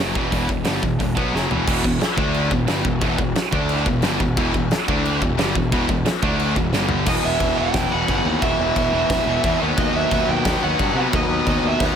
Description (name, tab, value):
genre	heavy metal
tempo	178 BPM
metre	4/4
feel	straight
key	E minor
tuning	A4 = 435 Hz
part	high-gain distorted guitar	riff	0.0-12.0 s	E2 to D4	-24 LUFS	left 11 dB	distortion
part	high-gain distorted guitar	riff	0.0-12.0 s	E2 to D4	-24 LUFS	right 11 dB	distortion
part	fuzz picked electric bass	bass	0.0-11.9 s	E1 to C3	-25 LUFS	equal	overdrive
part	big rock drum kit	drums	0.2-11.9 s	china cymbal, crash cymbal, hi-hat, kick drum, snare drum, toms	-23 LUFS	equal	none
part	rich studio string section	sustained chords	1.7-12.0 s	D3 to B4	-33 LUFS	equal	none
part	high-gain lead guitar	melody	7.1-12.0 s	D#5 to G5	-23 LUFS	right 2 dB	distortion
room	light reverb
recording	none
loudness	-17 LUFS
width	side -8 dB against mid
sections	0.0-1.7 A section; 1.7-7.1 B section; 7.1-12.0 C section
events	drum fill 1.3-1.7, 6.7-7.1, 11.8; half time 7.1-12.0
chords	0.0 Em; 1.7 E5; 2.2 D5; 2.5 Em; 3.5 D5; 3.9 Em; 4.9 D5; 5.2 Em; 6.2 D5; 6.6 E5; 6.7 G5; 7.1 E5; 9.6 B/D#